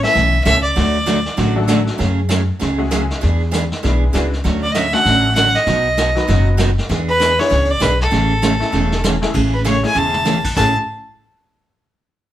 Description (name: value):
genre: country, western swing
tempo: 196 BPM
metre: 4/4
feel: swing 61% on 8ths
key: A major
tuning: A4 = 440 Hz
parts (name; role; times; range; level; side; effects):
- clear fiddle; melody; 0.0-1.5, 4.6-10.7 s; A4 to A5; -17 LUFS; equal; none
- honky-tonk upright piano; accompaniment; 0.0-10.7 s; F#3 to B4; -24 LUFS; left 3 dB; none
- upright bass; bass; 0.0-10.7 s; E1 to F#2; -18 LUFS; left 1 dB; none
- vintage brush drum kit; drums; 0.0-10.7 s; brushed snare drum, crash cymbal, hi-hat, kick drum, snare drum, toms; -24 LUFS; right 1 dB; none
- picked steel-string acoustic guitar; accompaniment; 0.1-10.7 s; A2 to A4; -20 LUFS; right 2 dB; none
room: moderate studio reverb, RT60 0.7 s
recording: band playing live in one room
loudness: -14 LUFS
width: side -12 dB against mid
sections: 0.0-9.3 A section; 9.3-10.6 B section; 10.6-11.8 C section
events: drum fill 8.7-9.3, 10.0-10.3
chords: 0.0 Aadd9; 0.8 D; 2.0 F#madd9; 3.2 E7; 4.4 Dmaj7; 5.7 B; 6.9 E7; 8.1 Amaj7